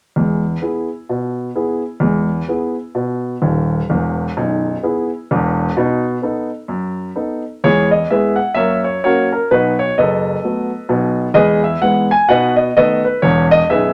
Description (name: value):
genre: jazz, stride piano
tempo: 128 BPM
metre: 4/4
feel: swing 61% on 8ths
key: E major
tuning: A4 = 441 Hz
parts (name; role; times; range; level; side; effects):
- warm grand piano; solo; 0.2-13.9 s; B0 to G#5; -16 LUFS; equal; none
room: moderate studio reverb, RT60 0.7 s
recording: none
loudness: -17 LUFS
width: mono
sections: 0.1-7.6 A section; 7.6-13.9 B section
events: none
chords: 0.1 E; 5.8 B7; 7.6 E; 8.6 F#; 9.5 B7; 11.4 E; 12.3 B7; 13.2 E